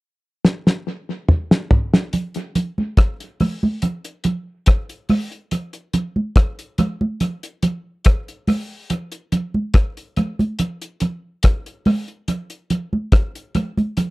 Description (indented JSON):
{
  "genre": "reggae",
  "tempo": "71 BPM",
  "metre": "4/4",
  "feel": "straight",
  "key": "none",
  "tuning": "none",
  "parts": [
    { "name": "cloth-damped thuddy drum kit", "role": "drums", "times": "0.4-14.1 s", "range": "hi-hat, kick drum, rim click, snare drum, toms", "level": "-16 LUFS", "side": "equal", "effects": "tape echo" },
    { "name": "congas", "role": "percussion", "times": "2.1-14.1 s", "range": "none", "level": "-19 LUFS", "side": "right 2 dB", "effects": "none" }
  ],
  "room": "little or no reverb",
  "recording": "dry, close 1970s-style studio recording",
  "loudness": "-19 LUFS",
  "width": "side -21 dB against mid",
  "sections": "0.0-2.1 A section; 2.1-14.1 B section",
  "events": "drum fill 0.4-2.1",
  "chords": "none"
}